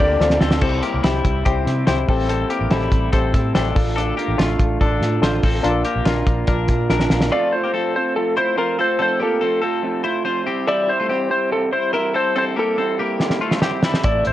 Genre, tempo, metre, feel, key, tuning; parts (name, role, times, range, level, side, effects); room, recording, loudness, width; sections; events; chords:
jangly indie pop; 143 BPM; 4/4; straight; A4 = 441 Hz
lightly driven lead guitar; melody; 0.0-0.4, 7.3-14.3 s; A4 to D5; -20 LUFS; left 1 dB
electric guitar through a small old amp; accompaniment; 0.0-14.3 s; A2 to A4; -25 LUFS; right 5 dB
reed electric piano; accompaniment; 0.0-7.3 s; C4 to C5; -24 LUFS; left 4 dB
twelve-string electric guitar; arpeggios; 0.0-14.3 s; G3 to C5; -24 LUFS; left 4 dB
vintage muted fingered electric bass; bass; 0.0-7.3, 14.0-14.3 s; A1 to C3; -22 LUFS; equal
cloth-damped thuddy drum kit; drums; 0.0-7.3, 13.2-14.3 s; crash cymbal, hi-hat, kick drum, ride cymbal, snare drum; -20 LUFS; equal; vintage 12-bit sampler grit
light reverb; cassette tape; -16 LUFS; side -13 dB against mid
0.6-7.3 A section; 7.3-14.3 B section
drum fill 0.2-0.6, 6.9-7.3, 13.2-14.0
0.0 Dm7; 0.6 C; 2.1 Am7; 3.8 Dm/A; 5.6 Bb; 7.3 F; 10.5 C